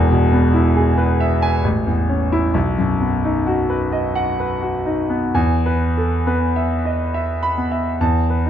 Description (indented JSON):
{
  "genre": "classical, romantic character piece for solo piano",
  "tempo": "63-70 BPM",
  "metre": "3/4",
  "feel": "rubato",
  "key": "E major",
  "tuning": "A4 = 440 Hz",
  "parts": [
    { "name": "clear concert grand piano", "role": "solo", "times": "0.0-8.5 s", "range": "E1 to B5", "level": "-16 LUFS", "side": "equal", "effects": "none" }
  ],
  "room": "moderate recital hall reverb, RT60 1.4 s",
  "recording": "dark, warm production",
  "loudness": "-16 LUFS",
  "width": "side -10 dB against mid",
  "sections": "0.0-5.3 A section; 5.3-8.5 B section",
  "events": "none",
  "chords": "0.0 E; 1.6 A; 2.5 B; 5.3 E"
}